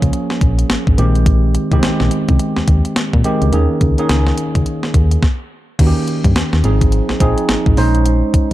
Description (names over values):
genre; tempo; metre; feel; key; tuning
R&B, new jack swing; 106 BPM; 4/4; swing 61% on 16ths; unclear; A4 = 442 Hz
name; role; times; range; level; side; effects
tine electric piano; accompaniment; 0.0-8.5 s; Eb3 to C5; -17 LUFS; right 1 dB; lush chorus
solid FM bass; bass; 0.0-8.2 s; Ab1 to Bb2; -15 LUFS; equal; none
clean 12-bit digital drum machine; drums; 0.0-8.5 s; crash cymbal, hi-hat, kick drum, snare drum; -16 LUFS; equal; overdrive
room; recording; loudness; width
little or no reverb; dark, warm production; -12 LUFS; side -15 dB against mid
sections
0.0-5.8 A section; 5.8-8.5 B section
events
stop 5.2-5.8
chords
0.0 Bbm7; 1.0 Abmaj7/Bb; 3.5 Eb7sus4; 5.8 Eb7; 6.6 Ab6; 7.8 Bbm11